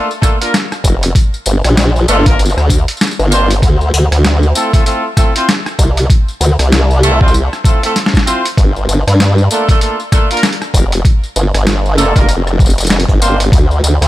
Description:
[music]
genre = glitch hop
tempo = 97 BPM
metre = 4/4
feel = swing 59% on 16ths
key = unclear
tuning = A4 = 441 Hz
[part]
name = clear horn section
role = stabs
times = 0.0-13.4 s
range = A3 to C5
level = -17 LUFS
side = equal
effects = sidechain pumping, ping-pong delay
[part]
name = boom bap sampler-style drum kit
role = drums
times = 0.1-14.1 s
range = hi-hat, rim click, snare drum, tambourine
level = -16 LUFS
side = left 1 dB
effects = none
[part]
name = electronic kick drum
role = drums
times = 0.2-13.7 s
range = none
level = -10 LUFS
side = equal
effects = overdrive
[part]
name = formant-sweep wobble bass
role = bass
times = 0.8-14.1 s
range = F1 to G2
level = -11 LUFS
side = equal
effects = chorus
[sound]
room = little or no reverb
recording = none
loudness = -9 LUFS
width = side -15 dB against mid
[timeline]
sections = 0.0-14.1 A section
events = kick drops out 3.0-3.6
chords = 0.0 Gm9; 3.6 Dm9; 8.6 Gm9; 13.5 N.C.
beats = 0.54 | 1.15 1.77 2.39 3.01 | 3.63 4.25 4.87 5.48 | 6.10 6.72 7.34 7.96 | 8.58 9.20 9.81 10.43 | 11.05 11.67 12.29 12.91 | 13.53

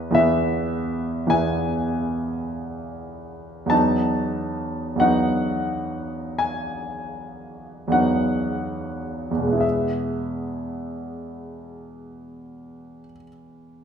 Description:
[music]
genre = classical, romantic nocturne for solo piano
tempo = 33-54 BPM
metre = 4/4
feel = rubato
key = E major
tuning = A4 = 439 Hz
[part]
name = clear concert grand piano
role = solo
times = 0.0-13.8 s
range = E2 to A5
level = -22 LUFS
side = equal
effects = none
[sound]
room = wet recital hall reverb, RT60 1.7 s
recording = minimal, uncompressed stereo recording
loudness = -21 LUFS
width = side -7 dB against mid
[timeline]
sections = 0.0-9.6 A section; 9.6-13.8 B section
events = slowing down 0.0-9.6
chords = 0.0 E; 3.7 B7/E; 9.6 E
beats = 0.16 1.31 2.47 | 3.71 5.01 6.41 7.95 | 9.63 11.11 12.60

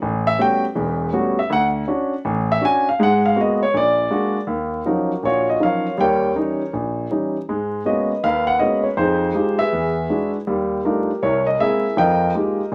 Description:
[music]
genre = solo jazz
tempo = 160 BPM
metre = 4/4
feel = swing 64% on 8ths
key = unclear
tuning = A4 = 440 Hz
[part]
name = warm concert grand piano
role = solo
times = 0.0-12.7 s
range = E1 to G#5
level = -20 LUFS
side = equal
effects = none
[sound]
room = moderate studio reverb, RT60 0.6 s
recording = vinyl crackle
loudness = -20 LUFS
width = mono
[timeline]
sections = 0.0-4.5 A section; 4.5-12.7 B section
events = grand piano solo 0.0-4.5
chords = 0.0 A13; 1.5 Dmaj7; 3.0 G#m9; 3.7 A#aug7; 4.5 Ebm9; 6.0 Eb7b9; 7.5 Abm11; 9.0 Fm9; 9.7 E9; 10.5 Ebmaj9#11; 11.2 Caug7; 12.0 Fm11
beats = | 0.01 0.39 0.76 1.13 | 1.50 1.88 2.25 2.62 | 3.00 3.37 3.74 4.11 | 4.49 4.86 5.23 5.61 | 5.98 6.36 6.73 7.10 | 7.48 7.85 8.23 8.60 | 8.97 9.35 9.72 10.10 | 10.47 10.84 11.22 11.59 | 11.96 12.34 12.71

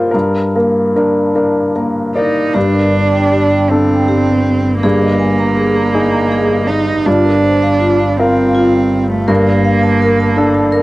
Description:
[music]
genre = neoclassical piano and strings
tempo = 48-56 BPM (dotted quarters)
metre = 6/8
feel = rubato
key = G minor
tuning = A4 = 440 Hz
[part]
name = clear baby grand piano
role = accompaniment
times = 0.0-10.8 s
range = G2 to D5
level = -14 LUFS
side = left 1 dB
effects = cassette tape
[part]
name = warm cello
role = second line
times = 2.1-10.8 s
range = A3 to Eb4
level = -14 LUFS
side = right 2 dB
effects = cassette tape
[part]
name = vibraphone with medium hard mallets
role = arpeggios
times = 2.5-10.8 s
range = F4 to Bb5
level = -19 LUFS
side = equal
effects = cassette tape, analog delay
[part]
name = clear double bass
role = bass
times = 2.5-10.8 s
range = G1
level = -19 LUFS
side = equal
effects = none
[sound]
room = moderate small room reverb, RT60 0.5 s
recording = home recording on cassette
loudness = -10 LUFS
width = side -18 dB against mid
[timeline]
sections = 0.0-2.6 A section; 2.6-10.8 A section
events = none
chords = 0.1 Gm; 2.6 Gsus2; 4.8 Absus2/G; 7.1 Fsus4/G; 9.3 Bbmaj7/G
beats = | 0.13 1.35 | 2.55 3.71 | 4.84 5.95 | 7.06 8.19 | 9.29 10.38

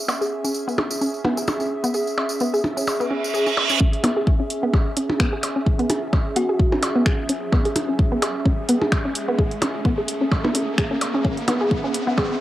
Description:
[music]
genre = minimal techno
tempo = 129 BPM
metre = 4/4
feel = swing 55% on 16ths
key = C# minor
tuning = A4 = 440 Hz
[part]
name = airy breathy pad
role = texture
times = 0.0-12.4 s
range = C#4 to E5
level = -27 LUFS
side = right 1 dB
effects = chorus, sidechain pumping
[part]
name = resonant blip pluck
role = riff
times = 0.1-12.2 s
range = B3 to G#4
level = -24 LUFS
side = equal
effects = chorus, sidechain pumping, tape echo
[part]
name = percussion blips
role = percussion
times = 0.1-12.3 s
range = none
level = -26 LUFS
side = equal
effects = none
[part]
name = tambourine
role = percussion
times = 0.1-3.8 s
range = none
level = -31 LUFS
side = equal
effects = none
[part]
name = reverse cymbal and riser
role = sound effects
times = 3.1-12.4 s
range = none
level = -28 LUFS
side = right 2 dB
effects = none
[part]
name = electronic kick drum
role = drums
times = 3.8-12.3 s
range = none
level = -20 LUFS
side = equal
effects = none
[part]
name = house drum kit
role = drums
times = 3.9-12.0 s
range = finger snaps, hi-hat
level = -28 LUFS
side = equal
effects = none
[part]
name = thumb-piano-like synth pluck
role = melody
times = 6.4-6.7 s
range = F#4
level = -25 LUFS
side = left 1 dB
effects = chorus, cassette tape
[sound]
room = moderate spring reverb, RT60 1.7 s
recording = home recording on cassette, high-pass filter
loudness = -19 LUFS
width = side -14 dB against mid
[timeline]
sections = 0.0-3.8 A section; 3.8-12.4 B section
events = filter sweep on synth arpeggio sound 0.0-3.8, 3.8-12.4; reverse cymbal 3.1-3.8; build-up 3.8-12.4; riser 3.8-12.4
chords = 0.0 C#m7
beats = | 0.08 0.55 1.01 1.48 | 1.94 2.41 2.87 3.34 | 3.81 4.27 4.74 5.20 | 5.67 6.13 6.59 7.06 | 7.53 7.99 8.46 8.92 | 9.39 9.85 10.32 10.78 | 11.25 11.71 12.18

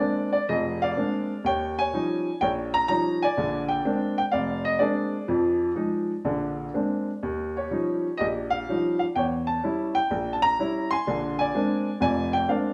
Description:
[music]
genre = solo jazz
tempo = 125 BPM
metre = 4/4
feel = swing 69% on 8ths, rubato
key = Bb mixolydian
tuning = A4 = 440 Hz
[part]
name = warm baby grand piano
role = solo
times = 0.0-12.7 s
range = F1 to C6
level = -26 LUFS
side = equal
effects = none
[sound]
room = moderate large studio reverb, RT60 1.0 s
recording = band playing live in one room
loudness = -26 LUFS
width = mono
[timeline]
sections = 0.0-12.7 A section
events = none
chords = 0.0 Bb9; 1.4 Eb9; 3.4 Bb9; 5.3 Fm7; 6.2 Bb9; 7.2 Eb9; 9.2 Edim7; 11.1 Bb9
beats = 0.47 0.96 | 1.45 1.93 2.41 2.89 | 3.37 3.84 4.32 4.80 | 5.28 5.76 6.25 6.74 | 7.23 7.72 8.20 8.69 | 9.17 9.64 10.11 10.59 | 11.07 11.54 12.01 12.48

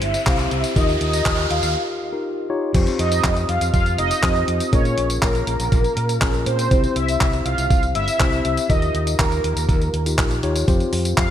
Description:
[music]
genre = italo disco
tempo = 121 BPM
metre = 4/4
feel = straight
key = F minor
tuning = A4 = 440 Hz
[part]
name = mellow synth brass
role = melody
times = 0.0-11.3 s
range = Bb4 to F5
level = -23 LUFS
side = right 1 dB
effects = chorus, digital delay
[part]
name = mellow tine electric piano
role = stabs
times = 0.0-11.3 s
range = C4 to Db5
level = -25 LUFS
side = left 3 dB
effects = ping-pong delay
[part]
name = overdriven fingered electric bass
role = bass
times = 0.0-11.3 s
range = F1 to Bb2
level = -23 LUFS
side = equal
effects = tube saturation
[part]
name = clean 12-bit digital drum machine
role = drums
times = 0.0-11.3 s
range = crash cymbal, handclaps, hi-hat, tambourine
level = -26 LUFS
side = equal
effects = high-pass filter on hats, small room ambience, high-pass filter on perc, high-pass filter on snare, high-pass filter on cymbals
[part]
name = riser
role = sound effects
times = 0.0-1.8 s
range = none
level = -29 LUFS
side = right 2 dB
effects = none
[part]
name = electronic kick drum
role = drums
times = 0.3-11.3 s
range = none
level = -20 LUFS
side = equal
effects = small room ambience
[sound]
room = moderate lush hall reverb, RT60 2.0 s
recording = bright 1980s-style digital production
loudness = -17 LUFS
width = side -10 dB against mid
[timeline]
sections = 0.0-2.7 A section; 2.7-11.3 B section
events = riser 0.0-1.8; filter sweep on tine electric piano 0.0-2.7; filter sweep on analog polysynth 0.0-2.7; break 1.8-2.7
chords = 0.0 C; 0.8 Ebadd9; 2.7 Fsus2; 4.7 Bbm7; 6.7 C; 8.7 Ebadd9; 10.7 Fsus2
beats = 0.27 | 0.76 1.26 1.75 2.25 | 2.75 3.24 3.74 4.23 | 4.73 5.22 5.72 6.22 | 6.71 7.21 7.70 8.20 | 8.70 9.19 9.69 10.18 | 10.68 11.18

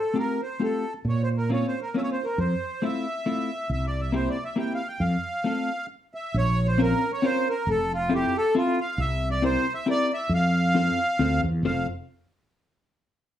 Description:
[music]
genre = musette waltz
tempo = 136 BPM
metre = 3/4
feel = straight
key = F major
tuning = A4 = 440 Hz
[part]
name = accordion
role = melody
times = 0.0-11.9 s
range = F4 to G5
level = -27 LUFS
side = right 1 dB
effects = light tremolo tuning
[part]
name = hollow-body jazz guitar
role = accompaniment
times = 0.1-11.9 s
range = A3 to C5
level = -26 LUFS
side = left 3 dB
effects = none
[part]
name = mellow fretless electric bass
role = bass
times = 1.0-11.9 s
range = F1 to Bb2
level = -25 LUFS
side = equal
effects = none
[sound]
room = moderate small room reverb, RT60 0.6 s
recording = studio reverb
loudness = -23 LUFS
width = side -11 dB against mid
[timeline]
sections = 0.0-6.4 A section; 6.4-11.6 B section; 11.6-13.0 C section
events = stop 5.9-6.4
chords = 0.0 Fadd9/A; 1.0 Bbmadd9; 2.4 Fmaj7; 3.7 C7; 5.0 F; 6.4 Bbmadd9; 7.7 Fmaj7; 9.0 C7; 10.3 F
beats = 0.15 0.60 | 1.05 1.50 1.94 | 2.38 2.82 3.26 | 3.70 4.13 4.57 | 5.01 5.46 5.91 | 6.36 6.80 7.24 | 7.68 8.11 8.55 | 8.98 9.42 9.86 | 10.30 10.74 11.19 | 11.64

